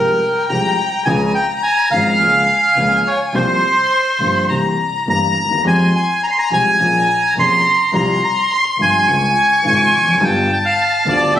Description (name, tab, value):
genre	tango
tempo	106 BPM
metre	4/4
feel	rubato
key	F minor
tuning	A4 = 440 Hz
part	bandoneon	melody	0.0-11.4 s	Bb4 to C6	-14 LUFS	equal	none
part	dark violin	second line	0.0-11.4 s	G5 to Db6	-21 LUFS	left 3 dB	none
part	warm concert grand piano	accompaniment	0.0-11.4 s	F1 to Ab4	-20 LUFS	left 1 dB	none
part	warm double bass	bass	0.0-11.4 s	F1 to F2	-24 LUFS	right 1 dB	none
room	light reverb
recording	recorded on a phone in the room, studio reverb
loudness	-12 LUFS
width	side -11 dB against mid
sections	0.0-11.4 A section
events	none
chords	0.0 Fmadd9/C; 1.1 Dbmaj7; 2.2 Bbm7/Db; 3.3 C7sus4; 4.5 C7; 5.7 Fmadd9; 6.8 Bbm7; 7.9 Csus4; 9.1 Dbmaj7; 10.2 G7